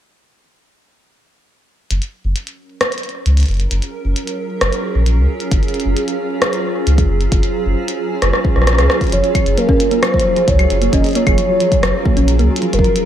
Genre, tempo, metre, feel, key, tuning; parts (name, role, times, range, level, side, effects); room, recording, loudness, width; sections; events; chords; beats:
IDM; 133 BPM; 4/4; straight; Gb lydian; A4 = 440 Hz
granular cloud pad; sustained chords; 3.3-13.1 s; Gb3 to C5; -21 LUFS; right 1 dB; built-in reverb, sidechain pumping
warm sub bass; bass; 1.9-12.8 s; Gb1 to Db2; -15 LUFS; equal; tube saturation
glitchy drum kit; drums; 1.9-13.0 s; claves, hi-hat, rim click; -20 LUFS; equal
electronic kick drum; drums; 5.5-12.9 s; -17 LUFS; equal
warm velvety synth lead; melody; 9.1-13.1 s; Bb4 to Eb5; -17 LUFS; right 1 dB; chorus, cassette tape, ping-pong delay, slapback echo
thumb-piano-like synth pluck; arpeggios; 9.1-13.0 s; F3 to Db4; -19 LUFS; right 2 dB; chorus, slapback echo
moderate lush hall reverb, RT60 1.6 s; big arena sound; -13 LUFS; side -10 dB against mid
1.9-9.1 A section; 9.1-13.1 B section
drum fill 8.2-9.1
1.9 Gbmaj7
| 1.91 2.36 2.81 3.26 | 3.71 4.16 4.61 5.06 | 5.51 5.96 6.42 6.87 | 7.32 7.77 8.22 8.67 | 9.12 9.57 10.03 10.48 | 10.93 11.38 11.83 12.28 | 12.73